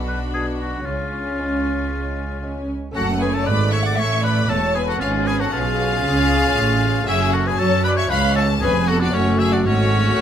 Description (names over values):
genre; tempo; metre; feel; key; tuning
classical, baroque-style concerto movement with solo episodes; 116 BPM; 4/4; straight; F# minor; A4 = 442 Hz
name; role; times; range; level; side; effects
clear chamber violin section; melody; 0.0-10.2 s; C#5 to D6; -27 LUFS; left 2 dB; none
rich chamber violin section; second line; 0.0-10.2 s; C#4 to F#5; -25 LUFS; left 3 dB; none
lute; accompaniment; 0.0-10.2 s; E2 to F#4; -29 LUFS; equal; none
rich symphonic viola section; accompaniment; 0.0-10.2 s; A3 to D4; -26 LUFS; equal; none
dark studio cello section; bass; 0.0-10.2 s; C#2 to F#3; -24 LUFS; right 3 dB; none
warm chamber double bass section; bass; 0.0-10.2 s; E1 to F#2; -24 LUFS; right 2 dB; none
warm oboe; melody; 0.1-10.2 s; C#4 to D5; -24 LUFS; left 3 dB; none
room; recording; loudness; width
light reverb; close, detailed microphones; -17 LUFS; side -9 dB against mid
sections
0.0-3.0 A section; 3.0-10.2 B section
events
none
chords
0.0 Bm; 0.9 C#; 3.0 F#m; 4.0 A; 5.0 C#7/G#; 7.1 F#m; 8.1 C#7; 9.1 F#m